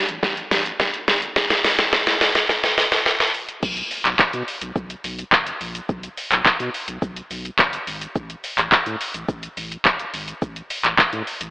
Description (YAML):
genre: dance-pop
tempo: 106 BPM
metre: 4/4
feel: straight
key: unclear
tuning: A4 = 440 Hz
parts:
  - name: warm sub bass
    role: bass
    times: 0.1-11.5 s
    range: E1 to B2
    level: -35 LUFS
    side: equal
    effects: sidechain pumping
  - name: smooth R&B drum kit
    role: drums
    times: 0.1-11.5 s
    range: crash cymbal, handclaps, hi-hat, kick drum, shaker, snare drum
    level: -19 LUFS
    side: equal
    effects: none
room: light reverb, digital ambience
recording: blown-out, overdriven recording, overdrive, high-pass filter, AM radio sound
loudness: -18 LUFS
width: side -22 dB against mid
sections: 0.0-3.6 A section; 3.6-11.5 B section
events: build-up 0.0-3.6; drum fill 0.0-3.6; drop 3.6-11.5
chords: none